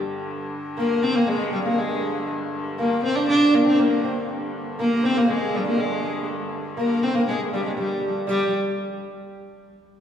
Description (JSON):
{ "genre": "medieval dance", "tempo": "120 BPM", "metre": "2/4", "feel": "straight", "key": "G phrygian", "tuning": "A4 = 440 Hz", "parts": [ { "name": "breathy tenor recorder", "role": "second line", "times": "0.0-8.5 s", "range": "G4 to D5", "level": "-30 LUFS", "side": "left 5 dB", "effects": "none" }, { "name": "warm hurdy-gurdy", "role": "drone", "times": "0.0-8.3 s", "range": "G2 to D3", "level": "-31 LUFS", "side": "left 1 dB", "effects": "none" }, { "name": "rich viola da gamba", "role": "melody", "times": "0.8-8.5 s", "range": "G3 to D4", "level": "-22 LUFS", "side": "equal", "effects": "none" }, { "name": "lute", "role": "second line", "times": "0.8-8.5 s", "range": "G3 to D4", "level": "-29 LUFS", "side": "right 2 dB", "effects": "none" } ], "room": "wet church reverb, RT60 2.6 s", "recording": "small room ambience", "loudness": "-20 LUFS", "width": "side -9 dB against mid", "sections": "0.3-8.3 A section", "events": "none", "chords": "none" }